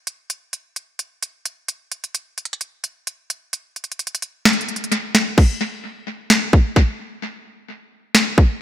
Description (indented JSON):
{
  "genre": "hip hop",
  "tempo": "130 BPM",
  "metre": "4/4",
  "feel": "half-time",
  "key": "none",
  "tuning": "none",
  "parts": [
    { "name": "trap drum kit", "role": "drums", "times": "0.1-8.5 s", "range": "crash cymbal, hi-hat, kick drum, snare drum", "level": "-16 LUFS", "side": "equal", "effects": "tape echo" }
  ],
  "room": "light reverb",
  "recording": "echo-heavy mix",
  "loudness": "-18 LUFS",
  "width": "side -12 dB against mid",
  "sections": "0.0-5.4 A section; 5.4-8.6 B section",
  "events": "hi-hats muted 5.4-8.6",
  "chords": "none"
}